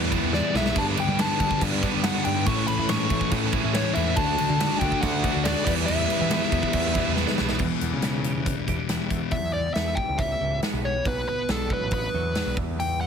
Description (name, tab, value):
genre	quiet-loud alternative rock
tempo	140 BPM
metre	4/4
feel	straight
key	E dorian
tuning	A4 = 440 Hz
part	thick fuzz guitar	riff	0.0-9.3 s	E2 to F#4	-28 LUFS	left 11 dB	distortion
part	thick fuzz guitar	riff	0.0-7.6 s	G2 to F#4	-28 LUFS	right 15 dB	distortion
part	growling picked electric bass	bass	0.0-13.1 s	A1 to G3	-29 LUFS	right 1 dB	overdrive
part	big rock drum kit	drums	0.1-12.9 s	crash cymbal, hi-hat, kick drum, snare drum, splash cymbal	-28 LUFS	right 1 dB	none
part	dark smooth lead guitar	melody	0.3-13.1 s	A4 to C#6	-28 LUFS	left 3 dB	overdrive
part	mellow tonewheel organ	sustained chords	0.8-7.6 s	E4 to B5	-38 LUFS	right 1 dB	chorus vibrato, fast rotary speaker
part	twelve-string electric guitar	arpeggios	7.6-13.1 s	E2 to G4	-35 LUFS	right 12 dB	analog chorus, digital delay
room	light reverb, small room ambience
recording	heavily compressed radio sound, multiband compression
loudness	-22 LUFS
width	side -7 dB against mid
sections	0.0-7.6 A section; 7.6-9.3 B section; 9.3-13.1 C section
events	drum fill 0.3-0.8, 7.2-7.6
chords	0.0 Em; 0.8 G; 2.5 A; 4.2 D; 5.7 Em; 11.1 Bm